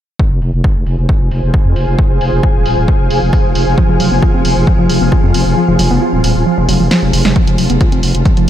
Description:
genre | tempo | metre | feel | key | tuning
driving peak-time techno | 134 BPM | 4/4 | straight | F minor | A4 = 440 Hz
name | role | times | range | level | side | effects
swarming drone | drone | 1.9-8.5 s | F3 to F4 | -21 LUFS | left 2 dB | built-in reverb, sidechain pumping
electronic kick drum | drums | 0.2-8.3 s | none | -12 LUFS | equal | none
ethereal airy pad | texture | 0.9-7.4 s | F4 to Ab5 | -19 LUFS | equal | ensemble chorus, built-in reverb, tremolo, sidechain pumping
growling FM bass | bass | 0.3-8.5 s | Eb1 to F2 | -14 LUFS | equal | sidechain pumping
punchy analog drum machine | drums | 0.4-8.5 s | hi-hat, snare drum | -20 LUFS | right 1 dB | sidechain pumping on hats, low-pass filter on hats, low-pass filter on snare, low-pass filter on room
warbly dusty pluck | riff | 3.8-8.5 s | F3 to F4 | -16 LUFS | right 1 dB | chorus, tube saturation, sidechain pumping, diffuse ambient delay
room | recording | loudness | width
light reverb | none | -10 LUFS | side -11 dB against mid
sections
0.2-7.4 A section; 7.4-8.5 B section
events
kick drops out 5.6-7.4; drum fill 6.9-7.4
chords
0.2 Fm; 7.4 N.C.

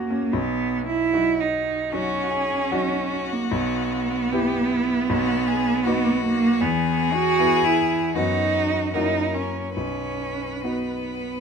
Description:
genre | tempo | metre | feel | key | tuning
classical, slow romantic movement for piano trio | 76 BPM | 4/4 | uneven beats, rubato | B major | A4 = 441 Hz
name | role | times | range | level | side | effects
rich cello | second line | 0.0-11.4 s | A#3 to F#4 | -22 LUFS | right 5 dB | none
clear grand piano | accompaniment | 0.0-11.4 s | B1 to F#5 | -26 LUFS | left 3 dB | none
clear violin | melody | 1.9-11.4 s | E4 to B4 | -28 LUFS | left 8 dB | none
room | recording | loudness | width
moderate small room ambience, RT60 0.5 s | minimal, uncompressed stereo recording | -20 LUFS | side -6 dB against mid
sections
0.3-11.4 A section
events
none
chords
0.3 B; 3.5 Em/B; 5.1 B; 6.6 E; 8.2 B/F#; 8.9 F#7; 9.8 B

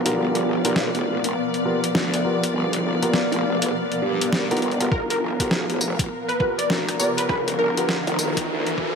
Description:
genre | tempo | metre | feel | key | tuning
glitch hop | 101 BPM | 4/4 | swing 62% on 16ths | unclear | A4 = 439 Hz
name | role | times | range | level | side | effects
muted studio string section | sustained chords | 0.0-9.0 s | F3 to D5 | -27 LUFS | left 1 dB | sidechain pumping
growl bass | bass | 0.0-8.9 s | F1 to G2 | -27 LUFS | equal | chorus, high-pass filter
granular cloud pad | texture | 0.0-9.0 s | B3 to F5 | -28 LUFS | left 1 dB | built-in reverb, sidechain pumping
dark grand piano | stabs | 0.1-7.9 s | B3 to A#4 | -28 LUFS | right 1 dB | sidechain pumping, tape echo
boom bap sampler-style drum kit | drums | 0.1-8.8 s | hi-hat, rim click, snare drum, tambourine | -26 LUFS | equal | studio reverb
plucky unison lead | melody | 4.9-7.8 s | A#4 to D5 | -26 LUFS | equal | ensemble chorus, tape echo
electronic kick drum | drums | 4.9-8.9 s | none | -26 LUFS | equal | studio reverb
riser | sound effects | 5.7-9.0 s | none | -30 LUFS | right 1 dB | none
room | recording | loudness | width
moderate lush hall reverb, RT60 2.0 s | high-pass filter | -20 LUFS | side -5 dB against mid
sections
0.0-9.0 A section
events
build-up 0.0-9.0; filter sweep on digital synth lead 0.0-9.0; riser 5.7-9.0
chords
0.0 G7#9

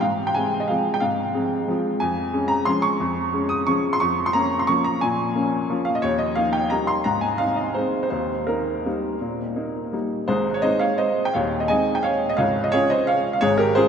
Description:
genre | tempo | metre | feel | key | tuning
classical, piano waltz | 160-191 BPM | 3/4 | rubato | Ab major | A4 = 440 Hz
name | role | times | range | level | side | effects
clear upright piano | solo | 0.0-13.9 s | Db1 to Eb6 | -20 LUFS | equal | none
room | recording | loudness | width
wet cathedral reverb, RT60 6.2 s | in a vast, echoing space | -20 LUFS | side -7 dB against mid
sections
0.0-10.3 A section; 10.3-13.9 B section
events
none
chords
0.0 Fm/Ab; 2.0 Db/F; 6.0 Eb; 7.1 Ab; 8.1 Eb; 10.3 Ab; 12.4 Db

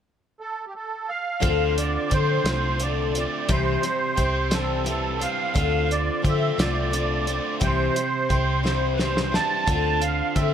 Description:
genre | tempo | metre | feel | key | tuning
folk rock and heartland rock | 58 BPM (dotted quarters) | 6/8 | straight | D minor | A4 = 440 Hz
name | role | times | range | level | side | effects
musette accordion | melody | 0.4-10.5 s | G4 to A5 | -26 LUFS | right 4 dB | analog delay
picked twelve-string acoustic guitar | accompaniment | 1.4-10.5 s | C3 to C5 | -28 LUFS | left 8 dB | none
biting overdriven guitar | riff | 1.4-10.5 s | C3 to C4 | -29 LUFS | right 3 dB | none
hollow-body short-scale fingered electric bass | bass | 1.4-10.5 s | C2 to D3 | -26 LUFS | equal | none
cloth-damped thuddy drum kit | drums | 1.4-10.5 s | hi-hat, kick drum, snare drum | -26 LUFS | equal | none
room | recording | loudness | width
light reverb | echo-heavy mix | -21 LUFS | side -9 dB against mid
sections
0.0-1.4 A section; 1.4-10.5 B section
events
drum fill 8.6-9.7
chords
0.0 N.C.; 1.4 Dm7; 3.5 C; 5.5 Dm7; 7.6 C; 9.7 Dm7

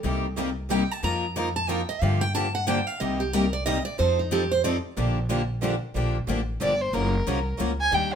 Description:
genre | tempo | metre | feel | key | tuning
acoustic string swing (jazz manouche) | 183 BPM | 3/4 | swing 61% on 8ths | Bb major | A4 = 440 Hz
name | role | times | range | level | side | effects
picked steel-string acoustic guitar | accompaniment | 0.0-8.1 s | C3 to Bb4 | -29 LUFS | left 6 dB | none
picked steel-string acoustic guitar | accompaniment | 0.0-8.1 s | C3 to Bb4 | -31 LUFS | right 4 dB | none
upright bass | bass | 0.0-8.2 s | Gb1 to G2 | -28 LUFS | equal | none
picked steel-string acoustic guitar | second line | 0.7-4.8 s | Eb4 to Bb5 | -27 LUFS | right 4 dB | none
warm violin | melody | 6.6-8.2 s | Bb4 to Ab5 | -25 LUFS | equal | none
room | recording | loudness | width
moderate studio reverb, RT60 0.7 s | minimal, uncompressed stereo recording | -23 LUFS | side -8 dB against mid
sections
0.0-6.0 A section; 6.0-8.2 A section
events
steel-string acoustic guitar solo 0.0-6.0; violin solo 6.0-8.2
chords
0.0 Cm7; 1.0 F7sus4; 2.0 Gm7; 3.0 Cm7; 4.0 F7; 5.0 Bb6; 6.9 Gbmaj7

